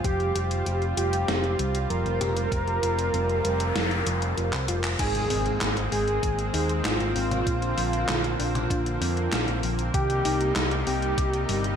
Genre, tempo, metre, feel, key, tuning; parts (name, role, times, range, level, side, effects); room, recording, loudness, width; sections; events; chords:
synthwave; 97 BPM; 4/4; straight; A4 = 439 Hz
wide unison lead; melody; 0.0-11.7 s; F4 to Bb4; -28 LUFS; right 1 dB; ping-pong delay
lush unison pad; sustained chords; 0.0-11.8 s; C3 to F4; -31 LUFS; right 1 dB; chorus
thumb-piano-like synth pluck; arpeggios; 0.0-11.6 s; D3 to G4; -35 LUFS; left 4 dB; chorus, digital delay
picked electric bass; bass; 0.0-11.7 s; F1 to F2; -28 LUFS; equal; tube saturation
electronic kick drum; drums; 0.0-11.3 s; -28 LUFS; equal; small room reverb
gated 80s digital drum machine; drums; 0.0-11.8 s; crash cymbal, handclaps, hi-hat, snare drum, toms; -30 LUFS; left 1 dB; gated reverb, gated reverb snare, small room reverb
noise sweep and impact; sound effects; 3.0-7.5 s; -35 LUFS; left 2 dB
light reverb; -23 LUFS; side -8 dB against mid
0.0-5.0 A section; 5.0-11.8 B section
filter sweep on synth arpeggio sound 0.0-5.0; noise sweep 3.0-5.0; drum fill 4.5-5.0; band accent 4.8-5.1; impact 5.0-7.5
0.0 Csus4/F; 5.0 Abadd9; 7.5 Bbadd9; 9.9 Cm7